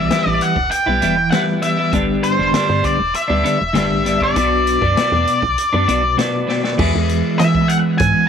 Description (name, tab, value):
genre	psychedelic rock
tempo	99 BPM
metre	4/4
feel	straight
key	unclear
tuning	A4 = 443 Hz
part	octave-fuzz lead guitar	melody	0.0-8.3 s	C5 to G#5	-18 LUFS	left 1 dB	distortion, tape echo
part	twelve-string electric guitar	riff	0.0-8.3 s	G2 to B4	-18 LUFS	equal	harmonic tremolo
part	woody FM bass	bass	0.0-8.1 s	E1 to E3	-21 LUFS	right 1 dB	none
part	vintage drum kit	drums	0.1-8.1 s	crash cymbal, hi-hat, kick drum, snare drum	-24 LUFS	left 3 dB	none
room	light reverb, small room reverb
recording	1960s-style stereo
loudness	-14 LUFS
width	side -7 dB against mid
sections	0.0-6.8 A section; 6.8-8.3 B section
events	drum fill 6.5-6.8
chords	0.0 Em; 1.9 G; 4.4 Bm; 6.8 E